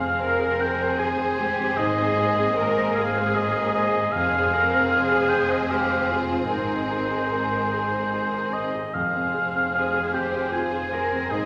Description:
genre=cinematic, emotional film score for orchestra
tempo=76 BPM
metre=3/4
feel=rubato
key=F minor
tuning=A4 = 442 Hz
part: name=warm symphonic violin section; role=melody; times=0.0-11.5 s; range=Bb4 to C5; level=-36 LUFS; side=equal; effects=none
part: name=clear oboe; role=second line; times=0.0-11.5 s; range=C5 to Ab5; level=-26 LUFS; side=equal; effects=none
part: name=warm symphonic violin section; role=second line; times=0.0-11.5 s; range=Ab4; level=-34 LUFS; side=equal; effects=none
part: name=warm grand piano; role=accompaniment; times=0.0-11.5 s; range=F2 to C5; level=-33 LUFS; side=equal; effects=none
part: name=warm symphonic viola section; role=accompaniment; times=0.0-11.5 s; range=Bb3 to C4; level=-36 LUFS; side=equal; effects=none
part: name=rich symphonic double bass section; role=bass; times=0.0-11.5 s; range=F1 to Ab1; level=-35 LUFS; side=equal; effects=none
part: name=rich symphonic cello section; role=bass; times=0.2-11.5 s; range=Eb4 to Bb4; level=-30 LUFS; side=equal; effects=none
room=wet scoring stage reverb, RT60 1.8 s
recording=none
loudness=-23 LUFS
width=mono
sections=0.0-11.5 A section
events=none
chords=0.0 Fm; 1.8 Abadd9; 4.1 Fm; 6.5 Abadd9; 8.9 Fm

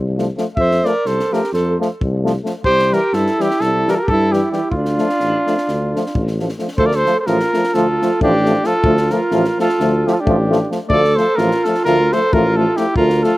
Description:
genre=balkan folk, Balkan brass band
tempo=262 BPM (eighths)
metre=9/8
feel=straight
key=D minor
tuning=A4 = 441 Hz
part: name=warm tuba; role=bass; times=0.0-13.2 s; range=A1 to G2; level=-20 LUFS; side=equal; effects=none
part: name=clear trombone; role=accompaniment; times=0.2-13.3 s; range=E3 to F3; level=-24 LUFS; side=right 3 dB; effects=none
part: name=warm euphonium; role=accompaniment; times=0.2-13.3 s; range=G3 to A3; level=-22 LUFS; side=left 4 dB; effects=slapback echo
part: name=compact cocktail drum kit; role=percussion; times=0.2-13.3 s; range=kick drum, snare drum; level=-25 LUFS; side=left 1 dB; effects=none
part: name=mellow cornet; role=melody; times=0.6-13.4 s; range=F4 to E5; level=-18 LUFS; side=equal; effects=none
part: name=warm alto saxophone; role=second line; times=0.6-13.4 s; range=D4 to C5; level=-19 LUFS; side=right 2 dB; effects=slapback echo
room=little or no reverb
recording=recorded outdoors, with no room sound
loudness=-14 LUFS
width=side -17 dB against mid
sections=0.0-6.8 A section; 6.8-13.4 A section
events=none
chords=0.0 F; 2.6 C; 4.7 Dm

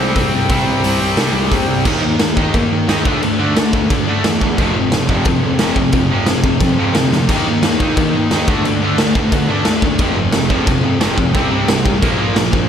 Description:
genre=punk rock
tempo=177 BPM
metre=4/4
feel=straight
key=F major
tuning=A4 = 440 Hz
part: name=cranked stack guitar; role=riff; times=0.0-12.7 s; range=F2 to Eb4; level=-20 LUFS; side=right 7 dB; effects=overdrive
part: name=thick fuzz guitar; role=riff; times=0.0-12.7 s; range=F2 to Eb4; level=-22 LUFS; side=equal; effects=distortion, slapback echo
part: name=tight distorted guitar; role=riff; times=0.0-12.7 s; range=F2 to Eb4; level=-20 LUFS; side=left 9 dB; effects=distortion
part: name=fuzz picked electric bass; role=bass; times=0.0-12.7 s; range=F1 to Eb3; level=-22 LUFS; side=equal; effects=overdrive
part: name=raw garage drum kit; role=drums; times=0.2-12.6 s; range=crash cymbal, hi-hat, kick drum, snare drum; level=-17 LUFS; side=equal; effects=none
room=moderate lush hall reverb, RT60 2.2 s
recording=big arena sound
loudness=-13 LUFS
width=side -8 dB against mid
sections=0.0-1.9 A section; 1.9-12.7 B section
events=half time 0.0-1.9; drum fill 7.1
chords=0.0 C5; 1.9 Eb5; 3.1 D5; 4.6 F5; 7.3 Eb5; 8.5 D5; 10.0 F5; 11.4 C5; 12.0 Bb5

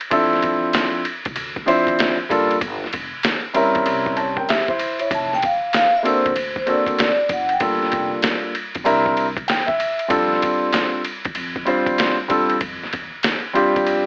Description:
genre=hip hop, jazz-hop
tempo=96 BPM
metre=4/4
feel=swing 65% on 16ths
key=F major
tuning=A4 = 440 Hz
part: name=trip hop sampler-style drum kit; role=drums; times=0.0-14.1 s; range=hi-hat, kick drum, ride cymbal, snare drum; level=-26 LUFS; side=equal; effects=overdrive
part: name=dark baby grand piano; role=accompaniment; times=0.1-14.1 s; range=F3 to A5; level=-21 LUFS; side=equal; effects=none
part: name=upright bass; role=bass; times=0.1-14.1 s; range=E1 to F2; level=-38 LUFS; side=equal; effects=none
part: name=vibraphone with soft mallets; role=melody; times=5.1-8.1 s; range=C5 to A5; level=-22 LUFS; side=equal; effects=none
room=moderate studio reverb, RT60 0.6 s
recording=AM radio sound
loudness=-20 LUFS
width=mono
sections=0.0-14.1 A section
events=grand piano fill 9.2-10.1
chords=0.1 Dm9; 2.6 Gm7; 3.9 C7b9; 5.1 Fmaj7; 6.4 D7b13; 7.6 Gm9; 8.9 C7; 10.1 F69

